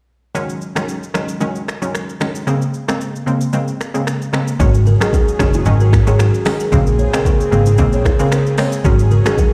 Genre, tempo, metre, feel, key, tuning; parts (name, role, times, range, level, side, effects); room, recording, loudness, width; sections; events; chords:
afrobeats; 113 BPM; 4/4; swing 55% on 16ths; A4 = 439 Hz
analog pluck; accompaniment; 0.3-9.5 s; Db3 to Db4; -21 LUFS; equal; chorus
afro-pop drum kit; drums; 0.3-9.5 s; finger snaps, hi-hat, kick drum, rim click, shaker; -21 LUFS; equal
lush unison pad; sustained chords; 4.6-9.5 s; Db3 to Ab4; -28 LUFS; equal; chorus
buzzing kalimba; riff; 4.6-9.3 s; Gb4 to Db5; -22 LUFS; equal; tape echo
vintage muted fingered electric bass; bass; 4.6-9.2 s; Gb1 to Bb1; -16 LUFS; equal
congas and bongos; percussion; 4.6-9.5 s; -28 LUFS; equal
light reverb; played on a big sound system in a bare room, large studio reverb; -16 LUFS; mono
0.3-4.6 A section; 4.6-9.5 B section
kick muted 3.5-4.6
0.3 Ab7sus4; 2.5 Bbm9; 4.6 Ab7sus4; 6.7 Bbm9; 8.8 Ab7sus4